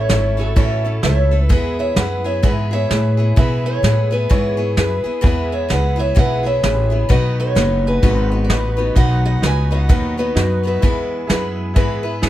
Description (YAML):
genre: honky-tonk and classic country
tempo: 129 BPM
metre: 4/4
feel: swing 60% on 8ths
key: E major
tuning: A4 = 440 Hz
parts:
  - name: picked steel-string acoustic guitar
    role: melody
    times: 0.0-12.2 s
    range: F#4 to G#5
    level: -22 LUFS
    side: equal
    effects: none
  - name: picked steel-string acoustic guitar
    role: accompaniment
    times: 0.0-12.3 s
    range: A2 to B4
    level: -26 LUFS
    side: left 3 dB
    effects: none
  - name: tack piano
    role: accompaniment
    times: 0.0-12.3 s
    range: D#4 to G#5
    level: -27 LUFS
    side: right 3 dB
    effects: none
  - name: upright bass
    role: bass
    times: 0.0-12.3 s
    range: F#1 to B2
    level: -18 LUFS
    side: equal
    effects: none
  - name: soft brush drum kit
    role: drums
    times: 0.1-12.3 s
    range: hi-hat, kick drum, snare drum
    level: -17 LUFS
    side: equal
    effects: none
room: light reverb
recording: none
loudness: -14 LUFS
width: side -13 dB against mid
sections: 0.0-12.3 A section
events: honky-tonk piano fill 12.0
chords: 0.0 A; 1.5 E; 7.1 B; 10.8 E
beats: 0.10 0.57 1.04 | 1.50 1.97 2.44 2.90 | 3.37 3.84 4.30 4.77 | 5.24 5.70 6.17 6.64 | 7.10 7.57 8.04 8.50 | 8.97 9.43 9.90 10.37 | 10.83 11.30 11.76 12.23